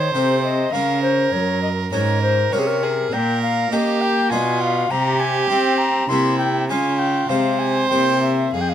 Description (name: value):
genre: classical, baroque-style sonata movement with continuo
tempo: 101 BPM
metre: 3/4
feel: straight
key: unclear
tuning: A4 = 441 Hz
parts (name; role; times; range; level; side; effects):
- tenor recorder; melody; 0.0-8.7 s; Ab4 to C6; -22 LUFS; left 5 dB; none
- rich violin; second line; 0.0-8.7 s; E4 to Db5; -22 LUFS; right 5 dB; none
- harpsichord; accompaniment; 0.0-8.7 s; F2 to F5; -25 LUFS; left 2 dB; none
- rich cello; bass; 0.0-8.7 s; F2 to C4; -22 LUFS; right 2 dB; none
room: light reverb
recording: none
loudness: -16 LUFS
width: side -10 dB against mid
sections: 0.0-8.7 A section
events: none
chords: 0.0 F7; 0.7 Bbm/Db; 1.3 Gb; 3.1 Gdim/Bb; 4.3 Bdim7; 4.9 C; 6.1 C7; 6.7 Db; 7.3 Fm/C; 7.9 C7